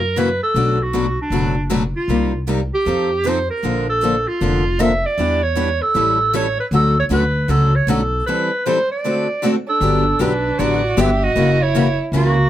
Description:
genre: acoustic string swing (jazz manouche)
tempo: 156 BPM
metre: 4/4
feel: swing 64% on 8ths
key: D major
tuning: A4 = 440 Hz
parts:
  - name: bright clarinet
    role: melody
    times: 0.0-12.5 s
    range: D4 to E5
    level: -19 LUFS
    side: right 2 dB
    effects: plate reverb
  - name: upright bass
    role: bass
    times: 0.0-12.5 s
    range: F1 to F#2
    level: -20 LUFS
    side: equal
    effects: none
  - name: picked steel-string acoustic guitar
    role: accompaniment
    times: 0.2-12.4 s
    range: B2 to A4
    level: -21 LUFS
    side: left 5 dB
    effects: none
  - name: picked steel-string acoustic guitar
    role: accompaniment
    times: 0.2-12.4 s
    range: B2 to B4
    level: -25 LUFS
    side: right 6 dB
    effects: none
  - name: warm violin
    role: second line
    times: 9.7-12.5 s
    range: A#3 to G4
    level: -23 LUFS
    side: right 4 dB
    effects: none
room: light reverb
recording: none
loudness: -15 LUFS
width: side -12 dB against mid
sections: 0.0-9.8 A section; 9.8-12.5 B section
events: break 8.3-9.8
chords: 0.0 F#7; 0.6 Bm7; 2.1 Cm7; 2.9 F7; 3.6 Bbmaj7; 5.2 Em7; 6.0 A7; 6.7 Dmaj7; 8.3 Am7; 9.0 D7; 9.8 Gmaj7; 11.4 F#7

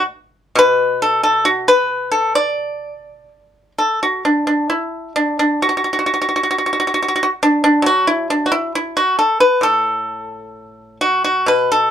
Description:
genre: chinese traditional, Chinese solo plucked strings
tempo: 66 BPM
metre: 2/4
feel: rubato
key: unclear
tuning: A4 = 442 Hz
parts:
  - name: pipa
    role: solo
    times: 0.0-11.9 s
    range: A2 to D5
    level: -14 LUFS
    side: equal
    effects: none
room: light reverb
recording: dark, warm production, faint mains hum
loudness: -14 LUFS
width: side -9 dB against mid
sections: 0.0-4.2 A section; 4.2-11.9 B section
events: none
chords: none

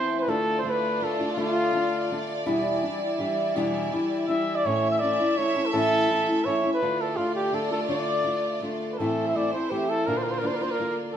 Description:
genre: mexican folk, mariachi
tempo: 166 BPM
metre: 3/4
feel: straight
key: D dorian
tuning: A4 = 440 Hz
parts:
  - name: dark trumpet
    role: melody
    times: 0.0-2.3, 4.3-11.2 s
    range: F4 to E5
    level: -26 LUFS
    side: equal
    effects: none
  - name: nylon-string guitar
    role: accompaniment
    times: 0.0-11.2 s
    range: E2 to F4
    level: -26 LUFS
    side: equal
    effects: none
  - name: rich studio violin section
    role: sustained chords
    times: 0.0-11.1 s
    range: G3 to E5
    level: -32 LUFS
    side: equal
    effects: none
room: wet large studio reverb, RT60 0.8 s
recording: band playing live in one room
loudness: -23 LUFS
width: side -9 dB against mid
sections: 0.3-9.0 A section; 9.0-11.2 B section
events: none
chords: 0.3 Dm; 2.5 Em7; 4.6 A; 6.8 Dm; 9.0 Am; 10.1 Bb

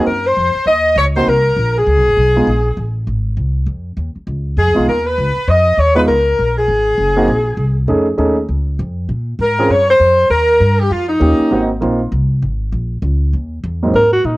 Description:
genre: jazz, big band swing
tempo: 199 BPM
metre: 4/4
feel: swing 62% on 8ths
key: Ab mixolydian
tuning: A4 = 445 Hz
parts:
  - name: clear saxophone section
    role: melody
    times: 0.0-11.7 s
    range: Eb4 to Eb5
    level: -13 LUFS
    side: left 1 dB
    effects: cassette tape
  - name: warm grand piano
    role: accompaniment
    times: 0.0-2.5, 4.7-13.9 s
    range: Ab2 to G#4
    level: -16 LUFS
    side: right 1 dB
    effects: cassette tape
  - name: upright bass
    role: bass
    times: 0.0-14.4 s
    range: Gb1 to Bb2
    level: -17 LUFS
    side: equal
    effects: none
  - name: breathy alto saxophone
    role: melody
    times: 14.0-14.4 s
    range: Eb4 to Bb4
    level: -11 LUFS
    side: equal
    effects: cassette tape
room: light reverb, studio reverb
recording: home recording on cassette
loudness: -12 LUFS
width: side -20 dB against mid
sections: 0.0-13.9 A section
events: none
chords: 0.0 Ab9 (rootless); 1.9 Db7(no3) (rootless); 3.1 Ab; 4.3 Db9; 6.7 Ab9; 7.9 F7alt; 9.1 Bb7(no3); 10.3 Eb9; 11.5 Ab9; 12.7 Bbm; 13.3 Eb5

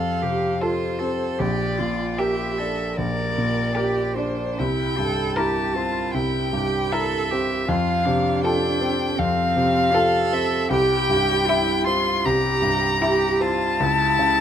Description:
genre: classical, slow romantic movement for piano quartet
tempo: 77 BPM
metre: 4/4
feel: rubato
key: F major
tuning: A4 = 440 Hz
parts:
  - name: rich violin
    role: melody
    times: 0.0-14.4 s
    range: C5 to C6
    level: -24 LUFS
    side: left 3 dB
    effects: none
  - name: clear cello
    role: second line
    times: 0.0-14.4 s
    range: C4 to Bb4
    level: -26 LUFS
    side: right 7 dB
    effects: none
  - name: clear concert grand piano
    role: accompaniment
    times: 0.0-14.4 s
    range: Bb1 to Bb4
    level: -23 LUFS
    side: left 1 dB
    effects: none
  - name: clear violin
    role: second line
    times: 0.6-13.6 s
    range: E4 to Bb4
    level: -28 LUFS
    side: left 1 dB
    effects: none
room: moderate studio reverb, RT60 0.7 s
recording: none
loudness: -19 LUFS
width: side -9 dB against mid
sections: 0.0-14.4 A section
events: none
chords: 0.0 F; 1.4 Gm/Bb; 4.6 C7; 7.7 F; 10.7 C; 13.8 A/C#

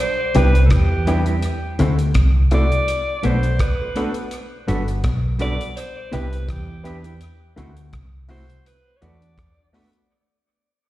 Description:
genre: lovers rock reggae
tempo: 83 BPM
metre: 4/4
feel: swing 55% on 16ths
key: unclear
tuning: A4 = 439 Hz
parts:
  - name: breathy alto saxophone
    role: melody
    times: 0.0-9.7 s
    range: G4 to D5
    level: -26 LUFS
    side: right 1 dB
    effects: tape echo, slapback echo
  - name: electric guitar with an envelope filter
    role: riff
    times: 0.3-9.2 s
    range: G2 to E3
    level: -29 LUFS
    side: left 6 dB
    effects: none
  - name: mellow electric guitar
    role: stabs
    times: 0.3-9.9 s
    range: G3 to C5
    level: -28 LUFS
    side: right 3 dB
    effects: slapback echo
  - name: damped 70s drum kit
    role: drums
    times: 0.3-10.1 s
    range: hi-hat, kick drum, rim click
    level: -23 LUFS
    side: equal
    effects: dub echo
  - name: warm grand piano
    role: accompaniment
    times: 0.4-9.9 s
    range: A3 to A4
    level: -27 LUFS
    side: left 2 dB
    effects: slapback echo
  - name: vintage muted fingered electric bass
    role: bass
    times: 0.4-9.4 s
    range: G1 to E2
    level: -18 LUFS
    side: equal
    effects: none
room: light reverb, small room ambience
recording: live gig heard through the venue's PA, recital hall reverb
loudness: -17 LUFS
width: side -15 dB against mid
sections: 0.0-10.1 A section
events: fade-out 0.0-10.1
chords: 0.0 Cmaj7; 1.4 D9; 2.9 Bm7; 4.3 Gmaj7; 5.8 Cmaj7; 7.2 D9; 8.7 Bm7

